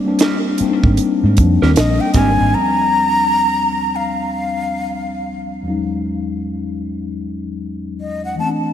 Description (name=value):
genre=R&B, neo-soul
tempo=77 BPM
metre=4/4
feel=swing 62% on 16ths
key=Eb major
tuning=A4 = 437 Hz
part: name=mellow tine electric piano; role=accompaniment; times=0.0-8.7 s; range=Eb2 to Eb4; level=-20 LUFS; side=left 3 dB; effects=slow stereo tremolo
part: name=electric guitar through a small old amp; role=second line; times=0.2-2.3 s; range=C4 to Bb4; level=-26 LUFS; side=right 4 dB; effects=ping-pong delay
part: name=tight funk drum kit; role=drums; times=0.2-2.4 s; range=hi-hat, kick drum, snare drum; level=-17 LUFS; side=right 1 dB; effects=none
part: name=vintage muted fingered electric bass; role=bass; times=0.6-2.5 s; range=Ab1 to Ab2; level=-15 LUFS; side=equal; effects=none
part: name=breathy jazz flute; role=melody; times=1.8-8.5 s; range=D#5 to Bb5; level=-18 LUFS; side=equal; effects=ping-pong delay
room=moderate lush hall reverb, RT60 2.7 s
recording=dreamy mix soaked in reverb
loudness=-15 LUFS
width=side -10 dB against mid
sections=0.0-2.5 A section; 2.5-8.7 B section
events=none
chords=0.0 Abmaj9; 2.5 Ebmaj9; 5.6 Emaj9